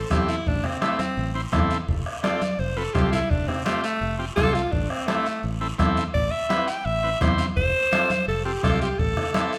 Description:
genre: latin, cumbia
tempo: 169 BPM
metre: 4/4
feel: straight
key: A minor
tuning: A4 = 440 Hz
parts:
  - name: raspy alto saxophone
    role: melody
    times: 0.0-9.6 s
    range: A3 to G5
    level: -28 LUFS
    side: equal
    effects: none
  - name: fingered electric bass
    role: bass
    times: 0.0-9.1 s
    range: F1 to E2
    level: -30 LUFS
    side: equal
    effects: none
  - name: overdriven combo organ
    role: accompaniment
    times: 0.1-9.5 s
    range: C4 to C5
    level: -32 LUFS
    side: equal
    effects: none
  - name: bombo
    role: percussion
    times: 0.1-9.5 s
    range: none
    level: -30 LUFS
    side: equal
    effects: none
  - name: congas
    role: percussion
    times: 0.1-9.5 s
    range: none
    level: -32 LUFS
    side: equal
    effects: none
  - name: guiro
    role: percussion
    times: 0.1-9.6 s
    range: none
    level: -41 LUFS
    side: equal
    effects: none
room: moderate large studio reverb, RT60 1.4 s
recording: none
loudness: -24 LUFS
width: mono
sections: 0.0-9.6 A section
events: alto saxophone solo 0.0-9.6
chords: 0.0 Am; 1.9 F; 4.7 Am; 7.6 F; 9.0 Am

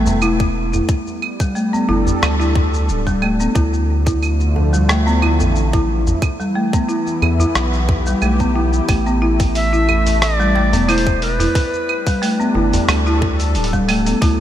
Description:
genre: organic downtempo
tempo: 90 BPM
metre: 4/4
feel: swing 54% on 16ths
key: unclear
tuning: A4 = 440 Hz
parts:
  - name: warm analog pad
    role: sustained chords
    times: 0.0-14.4 s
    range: D3 to A4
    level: -24 LUFS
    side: equal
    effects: chorus, sidechain pumping
  - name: folk marimba with medium mallets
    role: arpeggios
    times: 0.0-14.4 s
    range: G3 to E4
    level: -19 LUFS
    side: equal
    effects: digital delay
  - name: round analog bass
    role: bass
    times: 0.0-14.4 s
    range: D1 to E2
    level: -18 LUFS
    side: equal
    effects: sidechain pumping
  - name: dusty soul sampler-style drum kit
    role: drums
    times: 0.1-14.4 s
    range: claves, hi-hat, rim click, shaker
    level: -24 LUFS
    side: right 2 dB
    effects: none
  - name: djembe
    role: percussion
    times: 0.1-13.5 s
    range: none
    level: -26 LUFS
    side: right 1 dB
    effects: none
  - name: electronic kick drum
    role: drums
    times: 0.4-14.4 s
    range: none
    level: -18 LUFS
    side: equal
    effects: none
  - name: bright Native American-style cedar flute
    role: melody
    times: 9.6-12.6 s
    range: B4 to E5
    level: -22 LUFS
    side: equal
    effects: ping-pong delay
room: moderate lush hall reverb, RT60 2.9 s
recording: bright 1980s-style digital production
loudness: -14 LUFS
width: side -11 dB against mid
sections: 0.0-14.4 A section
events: none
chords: 0.0 A5; 0.9 G; 3.6 Dm; 6.2 Em; 8.9 A5; 11.6 G

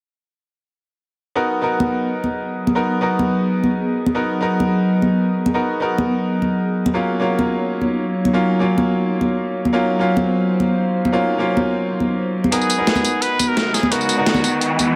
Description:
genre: liquid drum and bass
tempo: 172 BPM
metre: 4/4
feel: straight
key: G# dorian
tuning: A4 = 440 Hz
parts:
  - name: bright grand piano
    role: accompaniment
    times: 1.4-15.0 s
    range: F#3 to A#4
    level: -24 LUFS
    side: equal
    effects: low-pass filter, tape echo
  - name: glassy FM pad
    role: sustained chords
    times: 1.7-15.0 s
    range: F#3 to C#5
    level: -24 LUFS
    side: equal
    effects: ensemble chorus, built-in reverb, sidechain pumping
  - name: congas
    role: percussion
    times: 1.8-14.9 s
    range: none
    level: -24 LUFS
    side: equal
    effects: none
  - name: trumpet with straight mute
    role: melody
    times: 12.5-15.0 s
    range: F#4 to B4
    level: -24 LUFS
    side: equal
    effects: delay
  - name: breakbeat sampler-style drum kit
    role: drums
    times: 12.5-14.9 s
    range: hi-hat, snare drum, tambourine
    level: -23 LUFS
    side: equal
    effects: high-pass filter on hats, high-pass filter on perc, high-pass filter on snare, high-pass filter on room
  - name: electronic kick drum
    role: drums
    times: 12.5-14.5 s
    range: none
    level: -34 LUFS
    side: equal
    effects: none
  - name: riser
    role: sound effects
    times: 13.3-15.0 s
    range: none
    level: -28 LUFS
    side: equal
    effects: none
room: moderate lush hall reverb, RT60 1.5 s, digital ambience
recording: none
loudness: -19 LUFS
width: mono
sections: 1.4-12.5 A section; 12.5-15.0 B section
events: build-up 12.5-15.0; riser 13.3-15.0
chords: 1.4 G#m7; 6.9 D#m7; 12.5 G#m7

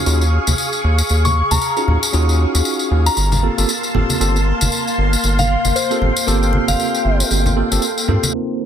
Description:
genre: deep house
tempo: 116 BPM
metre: 4/4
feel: swing 58% on 16ths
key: unclear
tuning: A4 = 442 Hz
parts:
  - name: soft string machine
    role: sustained chords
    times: 0.0-8.7 s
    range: Eb3 to D6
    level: -22 LUFS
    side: equal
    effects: ensemble chorus
  - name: tine electric piano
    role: stabs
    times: 0.0-8.7 s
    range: Bb3 to Bb4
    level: -22 LUFS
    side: right 2 dB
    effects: medium stereo tremolo, tape echo
  - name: round analog bass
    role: bass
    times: 0.1-8.2 s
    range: G1 to G2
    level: -16 LUFS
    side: equal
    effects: tube saturation
  - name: tambourine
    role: percussion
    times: 0.1-8.6 s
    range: none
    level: -22 LUFS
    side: left 2 dB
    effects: none
  - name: congas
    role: percussion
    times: 0.5-8.3 s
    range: none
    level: -25 LUFS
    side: left 2 dB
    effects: none
  - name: soft synth bell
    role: melody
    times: 1.3-7.2 s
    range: C5 to Db6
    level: -22 LUFS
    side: left 2 dB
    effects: chorus, tape echo
  - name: mellow horn-like synth lead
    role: melody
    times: 7.8-8.7 s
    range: A4 to C5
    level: -27 LUFS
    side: equal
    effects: analog chorus
room: light reverb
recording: dense, heavily limited modern master, low-pass filter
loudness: -14 LUFS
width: side -9 dB against mid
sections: 0.0-8.3 A section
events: none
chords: 0.0 Ebm11; 3.2 Gm11

